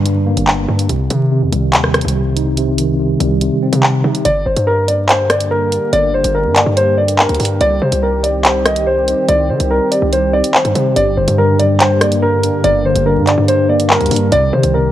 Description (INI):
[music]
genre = hip hop, drill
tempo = 143 BPM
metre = 4/4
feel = half-time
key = G minor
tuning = A4 = 443 Hz
[part]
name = mellow tine electric piano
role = accompaniment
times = 0.0-4.3, 11.0-14.9 s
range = G2 to Eb4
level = -16 LUFS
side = equal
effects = medium stereo tremolo
[part]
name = hard-hitting 808-style bass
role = bass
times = 0.0-14.9 s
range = F#1 to Eb3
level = -18 LUFS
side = equal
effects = none
[part]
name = drill drum kit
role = drums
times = 0.1-14.7 s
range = handclaps, hi-hat, rim click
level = -16 LUFS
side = equal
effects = vintage 12-bit sampler grit
[part]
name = dark concert grand piano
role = melody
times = 4.2-14.9 s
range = Bb4 to Eb5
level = -14 LUFS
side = equal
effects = ping-pong delay
[part]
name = dark analog pad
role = sustained chords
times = 4.7-14.9 s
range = D3 to G4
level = -21 LUFS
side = right 1 dB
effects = chorus
[sound]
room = light reverb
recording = vinyl crackle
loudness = -11 LUFS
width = side -12 dB against mid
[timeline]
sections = 0.0-4.3 A section; 4.3-14.9 B section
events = break 0.0-4.3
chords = 0.0 Gm; 0.9 Cm; 4.3 Gm; 7.6 Cm; 11.0 Gm; 14.3 Cm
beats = 0.06 0.47 | 0.89 1.31 1.73 2.15 | 2.57 2.99 3.41 3.83 | 4.25 4.67 5.09 5.51 | 5.93 6.35 6.77 7.19 | 7.61 8.03 8.45 8.87 | 9.29 9.71 10.12 10.54 | 10.96 11.38 11.80 12.22 | 12.64 13.06 13.48 13.90 | 14.32 14.74